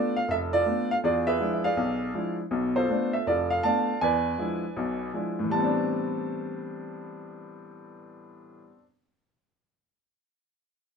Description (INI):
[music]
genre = solo jazz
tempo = 161 BPM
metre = 4/4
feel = swing 64% on 8ths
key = A minor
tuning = A4 = 442 Hz
[part]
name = clear upright piano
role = solo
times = 0.0-8.8 s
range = F1 to A5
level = -25 LUFS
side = equal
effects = none
[sound]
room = wet club reverb, RT60 0.6 s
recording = minimal, uncompressed stereo recording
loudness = -24 LUFS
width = side -6 dB against mid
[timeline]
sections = 0.0-5.5 A section; 5.5-8.5 B section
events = none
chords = 0.0 Bm7b5; 1.0 E7b9; 2.5 Bm7b5; 4.0 E7b9; 5.5 Am11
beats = 0.28 0.66 | 1.03 1.40 1.77 2.14 | 2.52 2.89 3.26 3.63 | 4.01 4.38 4.75 5.13 | 5.50 5.87 6.25 6.62 | 7.00 7.37 7.75 8.12